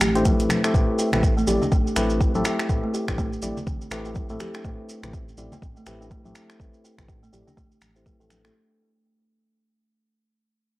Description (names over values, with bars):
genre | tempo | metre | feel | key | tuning
afro house | 123 BPM | 4/4 | swing 59% on 16ths | A minor | A4 = 440 Hz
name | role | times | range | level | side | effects
kalimba | arpeggios | 0.0-8.5 s | A3 to A4 | -27 LUFS | right 1 dB | sidechain pumping, low-pass filter, analog delay
dark detuned saw bass | bass | 0.0-8.5 s | A1 | -31 LUFS | equal | tube saturation, sidechain pumping
afro-pop drum kit | drums | 0.0-8.5 s | finger snaps, hi-hat, toms | -27 LUFS | equal | small room ambience
congas | percussion | 0.0-8.4 s | none | -32 LUFS | left 2 dB | none
maracas | percussion | 0.0-8.5 s | none | -36 LUFS | right 2 dB | none
tine electric piano | stabs | 0.2-8.5 s | A3 to D5 | -28 LUFS | left 1 dB | overdrive, sidechain pumping, low-pass filter, analog delay
electronic kick drum | drums | 0.3-8.2 s | none | -24 LUFS | equal | small room ambience
room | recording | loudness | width
light reverb | dry, gritty hardware recording, cassette tape | -21 LUFS | side -18 dB against mid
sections
0.0-8.5 A section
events
fade-out 0.0-8.5; filter sweep on tine electric piano 0.0-8.5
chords
0.0 Am9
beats
0.25 | 0.74 1.23 1.72 2.21 | 2.69 3.18 3.67 4.16 | 4.64 5.13 5.62 6.11 | 6.60 7.08 7.57 8.06